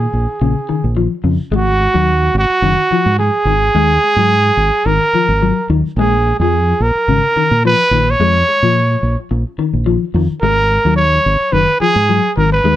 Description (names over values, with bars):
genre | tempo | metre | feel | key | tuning
afrobeat | 108 BPM | 4/4 | swing 54% on 16ths | G# dorian | A4 = 440 Hz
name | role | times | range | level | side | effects
breathy trumpet | melody | 0.0-12.8 s | F#4 to C#5 | -14 LUFS | right 2 dB | none
fingered electric bass | bass | 0.0-12.8 s | F#1 to A#2 | -16 LUFS | right 1 dB | none
semi-hollow electric guitar | arpeggios | 0.4-12.8 s | C#3 to G#3 | -19 LUFS | left 7 dB | tape echo
room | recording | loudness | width
light reverb | none | -11 LUFS | side -13 dB against mid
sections
0.0-1.5 A section; 1.5-12.8 A section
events
none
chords
0.0 A#m7; 1.5 G#5; 6.0 A#m; 10.4 G#m9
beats
0.41 0.97 | 1.52 2.08 2.63 3.19 | 3.75 4.30 4.86 5.41 | 5.97 6.52 7.08 7.63 | 8.19 8.75 9.30 9.86 | 10.42 10.97 11.53 12.09 | 12.64